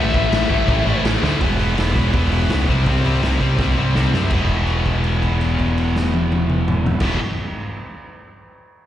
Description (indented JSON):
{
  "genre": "punk rock",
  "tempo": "165 BPM",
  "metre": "4/4",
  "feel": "straight",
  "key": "unclear",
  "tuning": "A4 = 440 Hz",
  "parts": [
    { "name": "crunchy overdriven guitar", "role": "melody", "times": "0.0-1.0 s", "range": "E5", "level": "-23 LUFS", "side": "left 5 dB", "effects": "slapback echo" },
    { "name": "distorted electric guitar", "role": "riff", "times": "0.0-7.2 s", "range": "E2 to C4", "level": "-23 LUFS", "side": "left 8 dB", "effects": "overdrive, slapback echo" },
    { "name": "distorted electric guitar", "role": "riff", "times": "0.0-7.2 s", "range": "A2 to G#4", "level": "-26 LUFS", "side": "right 12 dB", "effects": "distortion, slapback echo" },
    { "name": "thick fuzz guitar", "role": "riff", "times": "0.0-1.4 s", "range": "A2 to A3", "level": "-26 LUFS", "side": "equal", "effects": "distortion, slapback echo" },
    { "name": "growling picked electric bass", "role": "bass", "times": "0.0-7.2 s", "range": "E1 to F#2", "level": "-20 LUFS", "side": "equal", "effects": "overdrive" },
    { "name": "raw garage drum kit", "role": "drums", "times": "0.1-7.1 s", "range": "crash cymbal, hi-hat, kick drum, snare drum, toms", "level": "-22 LUFS", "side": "equal", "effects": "none" }
  ],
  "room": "small room ambience",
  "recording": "live gig heard through the venue's PA, recital hall reverb",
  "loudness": "-16 LUFS",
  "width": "side -12 dB against mid",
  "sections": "0.0-1.4 A section; 1.4-4.3 B section; 4.3-7.2 C section",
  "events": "drum fill 1.2, 3.6-4.3; held note 4.3-7.0",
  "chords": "0.0 A; 1.4 E; 2.7 C; 4.3 E"
}